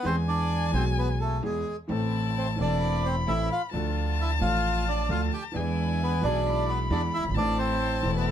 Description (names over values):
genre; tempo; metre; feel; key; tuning
tango; 131 BPM; 4/4; rubato; A minor; A4 = 443 Hz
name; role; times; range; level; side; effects
bandoneon; melody; 0.0-8.3 s; G#3 to G5; -29 LUFS; right 1 dB; none
dark violin; second line; 0.0-8.3 s; G#5 to B5; -34 LUFS; left 5 dB; none
warm concert grand piano; accompaniment; 0.0-8.3 s; E1 to A4; -31 LUFS; left 1 dB; none
upright bass; bass; 0.1-8.3 s; E1 to E2; -28 LUFS; right 1 dB; none
muted studio string section; stabs; 1.9-8.3 s; G#3 to F4; -37 LUFS; right 2 dB; none
room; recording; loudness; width
little or no reverb; close, detailed microphones; -24 LUFS; side -10 dB against mid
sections
0.0-8.3 A section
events
none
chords
0.1 E; 1.9 Am; 3.7 Dm; 5.5 E7; 7.4 Am